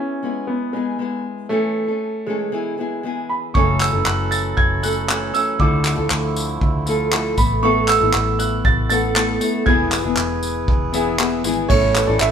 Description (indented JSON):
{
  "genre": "acoustic pop",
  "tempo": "118 BPM",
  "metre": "4/4",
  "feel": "straight",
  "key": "A major",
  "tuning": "A4 = 439 Hz",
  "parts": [
    { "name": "clear upright piano", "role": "melody", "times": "0.0-12.3 s", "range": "G#3 to A6", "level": "-21 LUFS", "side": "right 4 dB", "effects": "none" },
    { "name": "nylon-string guitar", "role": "accompaniment", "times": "0.0-12.3 s", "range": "F#2 to A4", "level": "-23 LUFS", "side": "left 2 dB", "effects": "none" },
    { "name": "vintage brush drum kit", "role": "drums", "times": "3.5-12.3 s", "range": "crash cymbal, handclaps, kick drum, tambourine", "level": "-21 LUFS", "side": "equal", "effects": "none" },
    { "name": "hand-pumped harmonium", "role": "sustained chords", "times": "3.6-12.3 s", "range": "D3 to B4", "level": "-28 LUFS", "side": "right 2 dB", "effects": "none" },
    { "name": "vintage muted fingered electric bass", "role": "bass", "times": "3.6-12.3 s", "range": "E1 to D2", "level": "-24 LUFS", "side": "left 1 dB", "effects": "none" },
    { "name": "clear grand piano", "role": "accompaniment", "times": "7.6-12.3 s", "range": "B3 to F#5", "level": "-26 LUFS", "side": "left 3 dB", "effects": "none" }
  ],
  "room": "moderate stone room reverb, RT60 1.0 s",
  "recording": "band playing live in one room",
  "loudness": "-17 LUFS",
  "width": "side -8 dB against mid",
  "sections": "0.0-3.6 A section; 3.6-11.7 B section",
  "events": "none",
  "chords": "0.0 E; 1.5 A/E; 2.5 E; 3.6 F#m7; 5.6 Dmadd9; 7.4 Asus2; 9.7 E; 11.7 A"
}